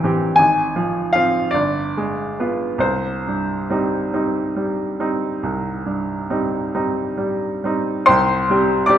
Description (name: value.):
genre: classical, romantic nocturne for solo piano.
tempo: 43-56 BPM (dotted quarters).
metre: 12/8.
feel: rubato.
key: C minor.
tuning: A4 = 438 Hz.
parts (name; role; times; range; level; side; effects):
bright baby grand piano; solo; 0.0-9.0 s; G1 to D6; -17 LUFS; equal; none.
room: moderate recital hall reverb, RT60 1.5 s.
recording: none.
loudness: -17 LUFS.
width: side -10 dB against mid.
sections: 0.0-8.1 A section.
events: none.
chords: 0.4 Fm/Ab; 1.5 G7b9; 2.8 Cm; 8.1 C5.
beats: 0.37 1.53 | 2.82 4.14 5.43 6.74 | 8.07.